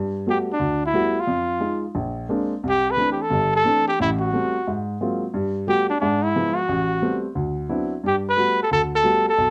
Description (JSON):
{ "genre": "jazz", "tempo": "178 BPM", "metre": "4/4", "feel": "swing 63% on 8ths", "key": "G major", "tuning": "A4 = 440 Hz", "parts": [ { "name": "warm baby grand piano", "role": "accompaniment", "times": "0.0-9.5 s", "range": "G1 to F#4", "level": "-26 LUFS", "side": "equal", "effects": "none" }, { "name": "breathy trumpet", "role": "melody", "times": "0.3-9.5 s", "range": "D4 to B4", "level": "-22 LUFS", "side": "equal", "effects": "none" } ], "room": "light reverb", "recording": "none", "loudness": "-22 LUFS", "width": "mono", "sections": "0.0-9.5 A section", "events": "none", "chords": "0.0 Gmaj9; 1.3 Fm7; 2.0 Bb9; 2.6 C69; 4.0 Am7; 4.7 Ab13; 5.3 Gmaj9; 6.0 G#dim7; 6.7 Am9; 7.4 D13; 8.0 Gmaj9" }